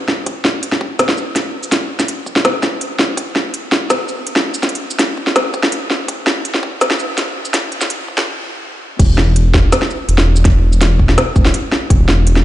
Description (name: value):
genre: half-time drum and bass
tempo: 165 BPM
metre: 4/4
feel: half-time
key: unclear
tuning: A4 = 440 Hz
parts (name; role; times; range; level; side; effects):
- organic electronic drum kit; drums; 0.1-12.4 s; crash cymbal, hi-hat, shaker, snare drum; -16 LUFS; equal; none
- electronic kick drum; drums; 0.3-12.0 s; none; -14 LUFS; equal; high-pass filter on kick, high-pass filter on room
- dark detuned saw bass; bass; 9.0-12.4 s; E1; -12 LUFS; equal; none
room: light reverb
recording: played on a big sound system in a bare room, large studio reverb, high-pass filter, nothing above 10.5 kHz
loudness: -13 LUFS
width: side -14 dB against mid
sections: 0.0-9.0 A section; 9.0-12.4 B section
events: build-up 0.0-9.0; stop 8.3-9.0; drop 9.0-12.4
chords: none